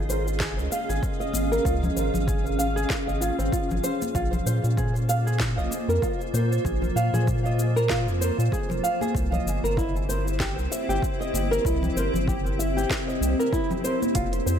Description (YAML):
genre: organic downtempo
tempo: 96 BPM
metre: 4/4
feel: swing 57% on 16ths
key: unclear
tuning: A4 = 440 Hz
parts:
  - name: granular cloud pad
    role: sustained chords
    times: 0.0-14.6 s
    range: Bb3 to F5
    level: -29 LUFS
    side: right 1 dB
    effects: built-in reverb, sidechain pumping
  - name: round analog bass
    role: bass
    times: 0.0-14.6 s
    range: F1 to Bb2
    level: -26 LUFS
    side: equal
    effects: none
  - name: flamenco guitar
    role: arpeggios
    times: 0.1-14.6 s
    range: C4 to F5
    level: -29 LUFS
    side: right 1 dB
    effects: low-pass filter, tape echo
  - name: afro-pop drum kit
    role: drums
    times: 0.1-14.6 s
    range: cabasa, hi-hat, snare drum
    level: -34 LUFS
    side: left 2 dB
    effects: tape echo
  - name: bongos and congas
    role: percussion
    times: 0.1-14.1 s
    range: none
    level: -34 LUFS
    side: left 4 dB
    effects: none
  - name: electronic kick drum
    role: drums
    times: 0.4-14.3 s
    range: none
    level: -30 LUFS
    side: equal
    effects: overdrive
room: light reverb, digital ambience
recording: echo-heavy mix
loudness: -22 LUFS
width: side -8 dB against mid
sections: 0.0-14.2 A section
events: none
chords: 0.0 Dbmaj7; 4.2 Bb5; 9.2 C